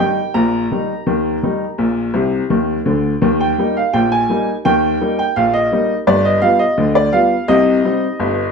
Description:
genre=ragtime piano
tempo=84 BPM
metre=2/4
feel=straight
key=Eb major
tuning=A4 = 439 Hz
part: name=warm upright piano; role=solo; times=0.0-8.5 s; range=G1 to Bb5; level=-13 LUFS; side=equal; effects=none
room=moderate large studio reverb, RT60 0.9 s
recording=band playing live in one room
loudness=-13 LUFS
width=side -5 dB against mid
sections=0.0-8.5 A section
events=upright piano fill 2.1-3.2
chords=0.3 Eb/Bb; 1.8 Bb; 3.2 Eb; 6.1 G7; 7.5 Cm

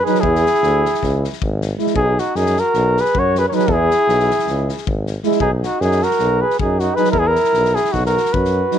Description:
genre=balkan folk, Balkan brass band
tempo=312 BPM (eighths)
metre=9/8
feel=straight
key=B major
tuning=A4 = 439 Hz
part: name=mellow flugelhorn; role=melody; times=0.0-8.8 s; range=F#4 to C#5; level=-17 LUFS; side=left 2 dB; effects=none
part: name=mellow flugelhorn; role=second line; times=0.0-8.8 s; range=D#4 to A#4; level=-24 LUFS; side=right 13 dB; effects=none
part: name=clear French horn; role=accompaniment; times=0.1-8.8 s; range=D#4 to E4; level=-24 LUFS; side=left 15 dB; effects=none
part: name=mellow euphonium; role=accompaniment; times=0.1-8.8 s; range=F#3 to G#3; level=-20 LUFS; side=right 17 dB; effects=none
part: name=loose indie drum kit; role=percussion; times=0.1-8.8 s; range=kick drum, snare drum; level=-27 LUFS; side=left 3 dB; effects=none
part: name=warm tuba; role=bass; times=0.2-8.6 s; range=G#1 to F#2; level=-20 LUFS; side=equal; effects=none
room=small room reverb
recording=1960s-style stereo with parts hard left and right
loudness=-14 LUFS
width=side -9 dB against mid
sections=0.0-8.8 A section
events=none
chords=0.2 E; 1.0 C#m; 2.0 B; 3.7 E; 4.5 C#m; 5.4 B; 7.1 E5; 7.9 B5

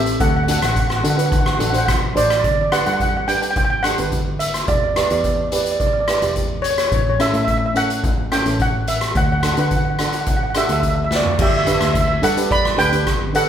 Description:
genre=calypso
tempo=107 BPM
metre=4/4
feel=straight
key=G major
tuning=A4 = 442 Hz
part: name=steel pan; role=melody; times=0.0-13.5 s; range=F#4 to B5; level=-19 LUFS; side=right 2 dB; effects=none
part: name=steel pan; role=accompaniment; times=0.0-13.5 s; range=C4 to D5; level=-25 LUFS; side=right 1 dB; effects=none
part: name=fingered electric bass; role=bass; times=0.0-13.5 s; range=E1 to D3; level=-24 LUFS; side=equal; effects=none
part: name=street-band drum kit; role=drums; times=0.1-13.5 s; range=crash cymbal, hi-hat, kick drum, rim click, snare drum, toms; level=-21 LUFS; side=equal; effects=none
room=moderate large studio reverb, RT60 1.1 s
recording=band playing live in one room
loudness=-16 LUFS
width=side -9 dB against mid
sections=0.0-2.4 A section; 2.4-11.4 B section; 11.4-13.5 A section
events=drum fill 11.1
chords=0.2 D; 2.4 G; 4.7 Em7; 6.9 A; 9.2 D; 11.4 G

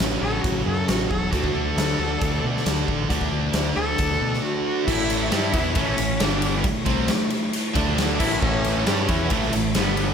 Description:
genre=quiet-loud alternative rock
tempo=135 BPM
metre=4/4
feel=straight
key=A major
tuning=A4 = 440 Hz
part: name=bright tonewheel organ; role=sustained chords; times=0.0-10.1 s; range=D4 to D6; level=-37 LUFS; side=right 1 dB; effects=none
part: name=high-gain distorted guitar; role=riff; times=0.0-10.1 s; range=F#2 to G4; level=-28 LUFS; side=right 11 dB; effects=distortion
part: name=overdriven semi-hollow guitar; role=riff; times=0.0-10.1 s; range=F#2 to G4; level=-28 LUFS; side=left 8 dB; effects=none
part: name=growling fingered electric bass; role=bass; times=0.0-10.1 s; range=E1 to B2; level=-27 LUFS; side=equal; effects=overdrive
part: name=big rock drum kit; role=drums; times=0.0-10.1 s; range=crash cymbal, hi-hat, kick drum, ride cymbal, snare drum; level=-25 LUFS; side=equal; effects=none
part: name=rich cello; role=melody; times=0.2-10.1 s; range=A3 to A4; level=-27 LUFS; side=left 1 dB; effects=slapback echo
part: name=overdriven semi-hollow guitar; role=riff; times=4.9-10.1 s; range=G2 to G4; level=-30 LUFS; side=right 1 dB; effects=slapback echo
room=moderate lush hall reverb, RT60 1.6 s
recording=big arena sound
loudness=-20 LUFS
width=side -7 dB against mid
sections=0.0-4.9 A section; 4.9-10.1 B section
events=cello solo 0.0-4.9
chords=0.0 F#m; 1.3 D; 4.9 A; 6.2 G5; 6.6 A; 7.8 D5; 8.2 A

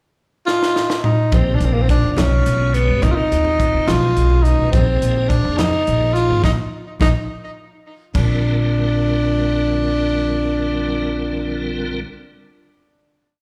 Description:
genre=electric jazz fusion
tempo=70 BPM (dotted quarters)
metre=6/8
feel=straight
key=Bb mixolydian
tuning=A4 = 440 Hz
part: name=breathy tenor saxophone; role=melody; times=0.5-12.0 s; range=Bb3 to F4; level=-22 LUFS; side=equal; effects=slapback echo
part: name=crisp fusion drum kit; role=drums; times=0.5-8.3 s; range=crash cymbal, hi-hat, kick drum, snare drum, toms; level=-24 LUFS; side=equal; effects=none
part: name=tonewheel organ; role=accompaniment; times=1.3-12.0 s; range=C3 to Eb5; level=-29 LUFS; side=equal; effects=slow rotary speaker, overdrive, chorus vibrato, slapback echo
part: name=upright bass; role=bass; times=1.3-12.0 s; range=Ab1 to C3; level=-21 LUFS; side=equal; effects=none
part: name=congas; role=percussion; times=1.3-8.4 s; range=none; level=-29 LUFS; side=equal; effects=none
room=light reverb, studio ambience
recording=live gig heard through the venue's PA, club reverb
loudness=-18 LUFS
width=mono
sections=0.0-1.3 pickup bar; 1.3-8.1 A section; 8.1-11.6 final chord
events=drum fill 0.5-1.3, 7.3-8.1; band accent 6.4-8.1; tonewheel organ fill 7.3-8.1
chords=0.0 N.C.; 1.3 Bbsus24; 2.2 Bdim7; 3.0 Cm7; 3.9 B; 4.7 Bb9sus4; 8.1 Bb

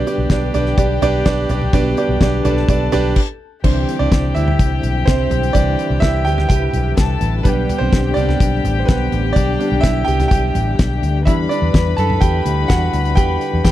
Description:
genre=piano-driven pop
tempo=126 BPM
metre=4/4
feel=straight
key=unclear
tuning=A4 = 440 Hz
part: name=warm studio violin section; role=second line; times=0.0-13.7 s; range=G4 to B5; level=-25 LUFS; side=left 8 dB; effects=none
part: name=bright concert grand piano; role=accompaniment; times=0.0-13.7 s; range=B2 to A5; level=-20 LUFS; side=right 6 dB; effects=none
part: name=tonewheel organ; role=sustained chords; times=0.0-13.7 s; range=D3 to B4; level=-26 LUFS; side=left 7 dB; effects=chorus vibrato, slow rotary speaker
part: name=vintage muted fingered electric bass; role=bass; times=0.0-13.7 s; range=A1 to F#2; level=-18 LUFS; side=left 1 dB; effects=none
part: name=damped 70s drum kit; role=drums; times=0.1-13.7 s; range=crash cymbal, hi-hat, kick drum, snare drum, toms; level=-17 LUFS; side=equal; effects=none
room=little or no reverb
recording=dry, close 1970s-style studio recording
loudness=-14 LUFS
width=side -13 dB against mid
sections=0.0-3.6 A section; 3.6-13.7 B section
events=stop 3.2-3.6; grand piano solo 3.6-13.7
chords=0.0 G/B; 3.6 Cadd9; 11.3 Em7

